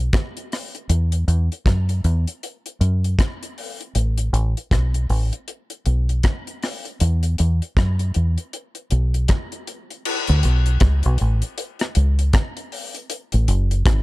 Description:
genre	lovers rock reggae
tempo	79 BPM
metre	4/4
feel	swing 60% on 16ths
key	A major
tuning	A4 = 440 Hz
part	deep dub fingered electric bass	bass	0.0-14.0 s	F#1 to F#2	-17 LUFS	equal	none
part	deep reggae drum kit	drums	0.1-14.0 s	crash cymbal, hi-hat, kick drum, rim click	-22 LUFS	equal	none
room	little or no reverb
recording	dark, warm production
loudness	-18 LUFS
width	side -20 dB against mid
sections	0.0-10.1 A section; 10.1-14.0 B section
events	none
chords	none

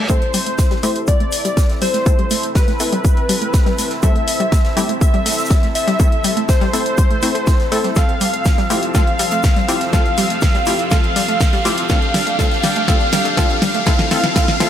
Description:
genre	progressive house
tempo	122 BPM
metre	4/4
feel	straight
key	A minor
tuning	A4 = 437 Hz
part	supersaw pad	sustained chords	0.0-14.7 s	F3 to E6	-26 LUFS	equal	sidechain pumping, low-pass filter
part	wide unison pluck	stabs	0.0-14.7 s	A3 to C5	-24 LUFS	left 2 dB	sidechain pumping, tape echo
part	reverse cymbal and riser	sound effects	0.0-14.7 s	none	-28 LUFS	equal	none
part	wide unison lead	melody	0.1-14.7 s	B4 to F5	-21 LUFS	equal	lush chorus, cassette tape, sidechain pumping, tape echo
part	soft synth bell	second line	0.1-14.7 s	B4 to F5	-28 LUFS	left 2 dB	none
part	analog pluck	arpeggios	0.1-14.6 s	G3 to A4	-24 LUFS	equal	chorus, sidechain pumping, tape echo
part	big rock drum kit	drums	0.1-14.7 s	hi-hat, shaker, snare drum	-30 LUFS	right 1 dB	high-pass filter on hats, high-pass filter on snare, high-pass filter on perc, high-pass filter on room
part	deep house drum kit	drums	0.1-14.7 s	hi-hat, snare drum	-22 LUFS	left 1 dB	sidechain pumping on hats
part	electronic kick drum	drums	0.1-14.5 s	none	-15 LUFS	equal	none
room	light reverb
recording	none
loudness	-14 LUFS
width	side -10 dB against mid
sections	0.1-14.7 A section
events	build-up 0.1-14.7; riser 0.1-14.7; filter sweep on synth arpeggio sound 0.1-14.7; filter sweep on supersaw synth 0.1-14.7; drum fill 8.0-14.7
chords	0.1 Am; 8.0 Fmaj7; 11.9 Gsus2

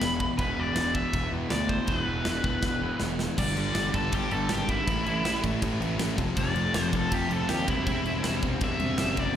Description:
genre	punk rock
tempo	160 BPM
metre	4/4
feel	straight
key	unclear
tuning	A4 = 440 Hz
part	overdriven electric guitar	melody	0.0-9.4 s	E4 to B5	-31 LUFS	left 1 dB	slapback echo, tape echo
part	biting overdriven guitar	riff	0.0-9.3 s	E2 to C4	-32 LUFS	left 8 dB	slapback echo
part	sludgy distorted guitar	riff	0.0-9.4 s	E2 to C4	-33 LUFS	right 10 dB	overdrive
part	fuzz picked electric bass	bass	0.0-9.4 s	E1 to E2	-31 LUFS	equal	overdrive
part	tight metal drum kit	drums	0.0-9.3 s	crash cymbal, kick drum, snare drum	-31 LUFS	equal	none
room	little or no reverb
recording	live gig heard through the venue's PA, recital hall reverb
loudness	-25 LUFS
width	side -10 dB against mid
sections	0.0-3.4 A section; 3.4-9.4 B section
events	drum fill 2.6-3.4; overdriven electric guitar solo 3.4-9.4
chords	0.0 E5; 3.4 G5; 4.9 A5; 6.2 F5; 7.7 C/E

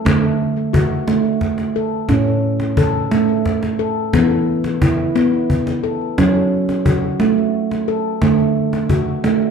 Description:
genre	world meditative, meditative tuned percussion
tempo	59 BPM (dotted quarters)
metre	6/8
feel	straight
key	unclear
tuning	A4 = 440 Hz
part	handpan	arpeggios	0.0-9.5 s	A2 to A4	-16 LUFS	right 1 dB	ping-pong delay
part	cajon	percussion	0.1-9.5 s	none	-20 LUFS	left 1 dB	none
room	wet echo chamber reverb, RT60 1.3 s, small room ambience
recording	dark, warm production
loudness	-15 LUFS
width	side -6 dB against mid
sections	0.0-9.5 A section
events	none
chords	0.1 D; 2.1 A; 4.1 E5; 6.2 F#m; 8.2 D

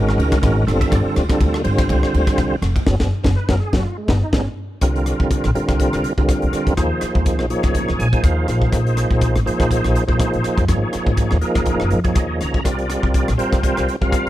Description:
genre	electric jazz fusion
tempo	123 BPM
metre	4/4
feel	swing 55% on 16ths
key	C minor from 4.8 s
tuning	A4 = 444 Hz
part	bright tonewheel organ	accompaniment	0.0-14.3 s	D3 to Bb5	-20 LUFS	right 1 dB	slow rotary speaker, chorus vibrato
part	upright bass	bass	0.0-14.3 s	F1 to F2	-20 LUFS	equal	none
part	crisp fusion drum kit	drums	0.1-14.3 s	hi-hat, kick drum, ride cymbal, rim click, snare drum	-21 LUFS	equal	none
room	small room reverb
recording	none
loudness	-16 LUFS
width	side -14 dB against mid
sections	0.0-4.8 A section; 4.8-14.3 B section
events	band accent 2.9-4.8; drum fill 3.8-4.8; tonewheel organ fill 7.8-8.7, 11.9-12.7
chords	0.0 C#sus4; 0.7 G9sus4; 2.9 F#sus4; 3.8 Gaug; 4.8 C9sus4; 6.8 Eb9sus4; 8.5 Bb9sus4; 10.7 Ab9sus4; 12.7 C9sus4

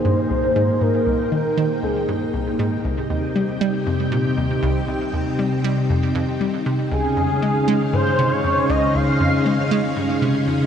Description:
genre	ambient, sequencer-driven space music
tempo	118 BPM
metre	4/4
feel	straight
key	Db lydian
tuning	A4 = 439 Hz
part	expressive portamento lead	melody	0.0-2.6, 6.9-9.7 s	Ab4 to F5	-23 LUFS	equal	ensemble chorus, shimmer reverb, tape echo
part	string machine, full ensemble	sustained chords	0.0-10.7 s	C3 to G5	-21 LUFS	equal	ensemble chorus
part	hollow square pluck	riff	0.1-10.6 s	C2 to Ab3	-22 LUFS	equal	chorus, tape echo
room	wet huge ambient reverb, RT60 7.4 s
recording	none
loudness	-18 LUFS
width	side -8 dB against mid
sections	0.0-10.7 A section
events	none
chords	0.0 Absus2; 2.8 Cm; 6.9 Dbadd9

